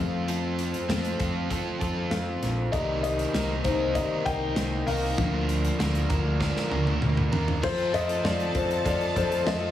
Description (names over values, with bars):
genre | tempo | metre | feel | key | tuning
piano-driven pop | 98 BPM | 4/4 | straight | unclear | A4 = 440 Hz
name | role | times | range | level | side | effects
felt-muted upright piano | accompaniment | 0.0-9.7 s | Eb3 to G5 | -29 LUFS | left 4 dB | none
mellow French horn section | sustained chords | 0.0-7.6 s | C3 to A4 | -36 LUFS | left 2 dB | none
overdriven electric guitar | riff | 0.0-9.7 s | C3 to Bb4 | -32 LUFS | right 4 dB | none
overdriven picked electric bass | bass | 0.0-9.7 s | Bb1 to F2 | -29 LUFS | equal | none
modern studio drum kit | drums | 0.3-9.6 s | crash cymbal, hi-hat, kick drum, snare drum, toms | -31 LUFS | equal | none
warm studio violin section | second line | 7.6-9.7 s | A4 to A5 | -33 LUFS | left 1 dB | none
room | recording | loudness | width
light reverb, small room ambience | heavily compressed radio sound, multiband compression, studio reverb | -24 LUFS | side -12 dB against mid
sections
0.0-7.6 A section; 7.6-9.7 B section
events
felt piano solo 0.0-7.6; drum fill 6.4-7.6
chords
0.0 F; 2.7 Cm7; 5.2 Bb/D; 7.6 F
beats
| 0.28 0.90 1.51 2.12 | 2.73 3.35 3.96 4.57 | 5.18 5.79 6.41 7.02 | 7.63 8.24 8.86 9.47